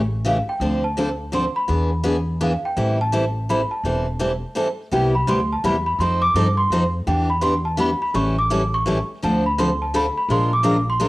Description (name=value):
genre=acoustic string swing (jazz manouche)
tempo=168 BPM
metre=3/4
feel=swing 62% on 8ths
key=A minor, C major from 4.9 s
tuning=A4 = 437 Hz
part: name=worn celesta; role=melody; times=0.0-11.1 s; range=F5 to D6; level=-22 LUFS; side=right 1 dB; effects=cassette tape
part: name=upright bass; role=bass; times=0.0-11.1 s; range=E1 to G2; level=-23 LUFS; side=equal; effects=none
part: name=picked steel-string acoustic guitar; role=accompaniment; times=0.2-11.1 s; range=C3 to Bb4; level=-22 LUFS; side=left 1 dB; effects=cassette tape, plate reverb
room=moderate studio reverb, RT60 0.6 s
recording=home recording on cassette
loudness=-18 LUFS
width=side -19 dB against mid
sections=0.0-4.9 A section; 4.9-11.1 B section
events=none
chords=0.0 A7; 0.6 Dm7; 1.7 E7; 2.8 Am7; 4.9 Cmaj7; 6.0 F13; 7.1 Em7; 8.1 A7; 9.2 Dm7; 10.3 Bb9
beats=0.25 | 0.61 0.97 1.33 | 1.69 2.04 2.40 | 2.76 3.12 3.48 | 3.84 4.20 4.55 | 4.91 5.27 5.63 | 5.99 6.35 6.70 | 7.06 7.42 7.78 | 8.14 8.49 8.85 | 9.21 9.57 9.93 | 10.29 10.64 11.00